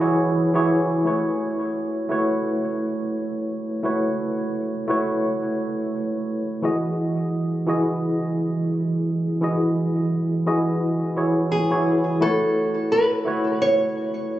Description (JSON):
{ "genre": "chillout", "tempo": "86 BPM", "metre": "4/4", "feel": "swing 55% on 16ths", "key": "A lydian", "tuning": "A4 = 440 Hz", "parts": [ { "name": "nylon-string guitar", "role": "melody", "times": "0.0-0.3, 11.5-14.4 s", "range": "G#4 to C#5", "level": "-22 LUFS", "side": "equal", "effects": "digital delay" }, { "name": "mellow tine electric piano", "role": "accompaniment", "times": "0.0-14.4 s", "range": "E3 to D#5", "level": "-21 LUFS", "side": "equal", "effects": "medium stereo tremolo, auto-pan, low-pass filter, digital delay" } ], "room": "moderate lush hall reverb, RT60 2.4 s", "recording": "recorded on a phone in the room, club reverb, compression, nothing above 7.8 kHz", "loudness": "-20 LUFS", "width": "side -13 dB against mid", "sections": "0.0-1.1 A section; 1.1-12.2 B section; 12.2-14.4 C section", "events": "none", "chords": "0.0 Emaj9; 1.1 A69; 6.6 Emaj9; 12.2 A69" }